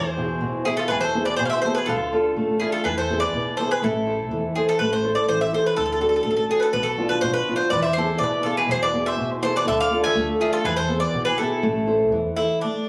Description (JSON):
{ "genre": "greek folk, Greek bouzouki band", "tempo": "123 BPM", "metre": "2/4", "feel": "straight", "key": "A harmonic minor", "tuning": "A4 = 438 Hz", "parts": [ { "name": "Greek bouzouki", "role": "melody", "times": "0.0-12.9 s", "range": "D4 to G#5", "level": "-26 LUFS", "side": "equal", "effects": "none" }, { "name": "mandolin", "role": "second line", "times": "0.0-4.5, 7.7-12.1 s", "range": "E4 to E5", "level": "-32 LUFS", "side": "equal", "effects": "none" }, { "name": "nylon-string guitar", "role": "accompaniment", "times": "0.0-12.9 s", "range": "B2 to C5", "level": "-26 LUFS", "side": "equal", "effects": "none" }, { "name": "upright bass", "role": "bass", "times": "0.0-12.3 s", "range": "A1 to E2", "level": "-36 LUFS", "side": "equal", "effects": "none" } ], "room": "light reverb", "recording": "recorded on a phone in the room, club reverb, compression", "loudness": "-22 LUFS", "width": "mono", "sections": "0.0-4.8 A section; 4.8-12.6 A section", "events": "none", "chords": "0.0 E; 1.9 Dm; 2.9 E; 3.8 Am; 5.8 D; 6.7 Bdim; 7.7 E; 9.7 Dm; 10.7 E; 11.6 Am", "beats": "0.43 | 0.91 1.40 | 1.88 2.37 | 2.85 3.34 | 3.83 4.31 | 4.80 5.28 | 5.77 6.26 | 6.74 7.23 | 7.72 8.21 | 8.70 9.19 | 9.67 10.16 | 10.65 11.14 | 11.64 12.13 | 12.62" }